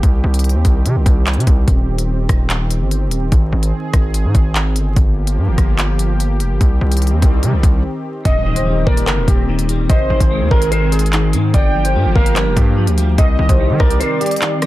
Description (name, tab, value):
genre	hip hop, drill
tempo	146 BPM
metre	4/4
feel	half-time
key	unclear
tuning	A4 = 444 Hz
part	warm analog pad	sustained chords	0.0-14.7 s	Eb3 to Ab4	-25 LUFS	right 1 dB	chorus
part	distorted 808-style bass	bass	0.0-14.0 s	Eb1 to Eb3	-16 LUFS	equal	distortion
part	drill drum kit	drums	0.0-14.7 s	handclaps, hi-hat, kick drum, rim click	-15 LUFS	equal	none
part	swell and impact	sound effects	6.5-9.9 s	none	-28 LUFS	equal	none
part	dark concert grand piano	melody	8.2-14.7 s	G4 to Eb5	-22 LUFS	right 1 dB	tape echo
part	warm velvety synth lead	second line	8.3-14.7 s	Bb4 to G5	-23 LUFS	right 1 dB	chorus, tape echo
part	clean electric guitar	accompaniment	8.3-14.7 s	C3 to C5	-22 LUFS	left 3 dB	ensemble chorus
room	little or no reverb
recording	dense, heavily limited modern master, vinyl crackle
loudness	-12 LUFS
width	side -16 dB against mid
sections	0.0-8.3 A section; 8.3-14.7 B section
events	swell 6.5-8.3; break 7.8-8.3, 14.0-14.7; impact 8.3-9.9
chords	0.0 Cm; 1.7 Eb6; 3.3 Ab; 5.0 Gm7; 6.6 Cm; 8.3 Eb6; 9.9 Ab; 11.5 Gm7; 13.2 Cm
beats	| 0.03 0.44 0.85 1.26 | 1.68 2.09 2.50 2.91 | 3.32 3.73 4.14 4.55 | 4.96 5.38 5.79 6.20 | 6.61 7.02 7.43 7.84 | 8.25 8.66 9.07 9.48 | 9.90 10.31 10.72 11.13 | 11.54 11.95 12.36 12.77 | 13.18 13.59 14.01 14.42